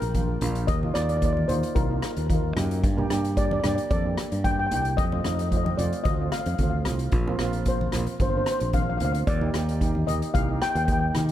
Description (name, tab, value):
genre	calypso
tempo	112 BPM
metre	4/4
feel	straight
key	Bb major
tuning	A4 = 442 Hz
part	steel pan	melody	0.0-11.1 s	Bb4 to G5	-29 LUFS	left 2 dB	tape echo
part	fingered electric bass	bass	0.0-11.3 s	G1 to Eb3	-27 LUFS	equal	none
part	street-band drum kit	drums	0.0-11.3 s	hi-hat, kick drum, rim click	-28 LUFS	equal	none
part	congas	percussion	0.1-11.3 s	none	-35 LUFS	left 1 dB	none
part	steel pan	accompaniment	0.2-11.3 s	A3 to A4	-31 LUFS	right 5 dB	none
room	light reverb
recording	none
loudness	-22 LUFS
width	side -12 dB against mid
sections	0.0-11.3 A section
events	none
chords	0.0 Bb; 0.7 Ebsus2; 2.8 Gm; 5.0 F; 7.1 Bbsus2; 9.3 Eb